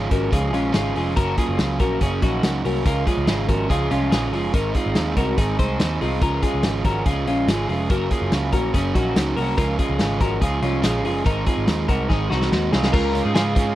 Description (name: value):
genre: jangly indie pop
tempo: 143 BPM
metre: 4/4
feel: straight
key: Db major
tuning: A4 = 440 Hz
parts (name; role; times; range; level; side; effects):
- crunchy overdriven guitar; accompaniment; 0.0-13.8 s; Gb2 to F4; -25 LUFS; right 5 dB; none
- twelve-string electric guitar; arpeggios; 0.0-13.7 s; Db4 to C5; -24 LUFS; left 3 dB; wide subtle chorus
- vintage muted picked electric bass; bass; 0.0-13.7 s; F1 to Ab2; -25 LUFS; equal; none
- raw garage drum kit; drums; 0.1-13.7 s; crash cymbal, hi-hat, kick drum, snare drum; -22 LUFS; equal; none
room: little or no reverb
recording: dry, close 1970s-style studio recording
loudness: -18 LUFS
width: side -14 dB against mid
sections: 0.0-12.9 A section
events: drum fill 12.1-12.9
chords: 0.0 Db; 1.2 Gb; 2.9 Db; 4.5 Ab; 6.2 Db; 7.9 Gb; 9.6 Db; 11.3 Ab; 12.9 Db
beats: 0.32 0.74 | 1.16 1.58 2.01 2.43 | 2.85 3.27 3.69 4.11 | 4.54 4.96 5.38 5.80 | 6.22 6.64 7.06 7.48 | 7.90 8.32 8.74 9.16 | 9.58 10.00 10.42 10.84 | 11.26 11.68 12.10 12.52 | 12.94 13.36